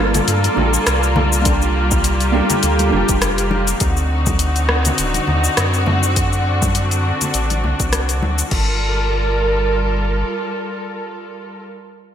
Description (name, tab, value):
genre	sunset chillout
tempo	102 BPM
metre	4/4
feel	swing 56% on 16ths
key	G minor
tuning	A4 = 442 Hz
part	hollow-body jazz guitar	accompaniment	0.0-3.8 s	Bb3 to A4	-22 LUFS	right 2 dB	auto-pan, ping-pong delay
part	rich studio string section	sustained chords	0.0-11.6 s	D3 to Bb4	-20 LUFS	equal	none
part	warm sub bass	bass	0.0-10.2 s	D1 to G2	-19 LUFS	equal	none
part	deep house drum kit	drums	0.1-8.6 s	cabasa, crash cymbal, hi-hat, rim click	-22 LUFS	left 2 dB	overdrive, gated reverb
part	congas	percussion	0.1-8.4 s	none	-25 LUFS	left 1 dB	none
part	electronic kick drum	drums	1.5-8.6 s	none	-21 LUFS	equal	overdrive
room	moderate lush hall reverb, RT60 1.6 s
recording	bright 1980s-style digital production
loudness	-15 LUFS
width	side -9 dB against mid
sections	0.0-8.5 A section; 8.5-10.9 B section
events	none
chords	0.0 Gm9; 3.8 D7b9; 8.5 Gm9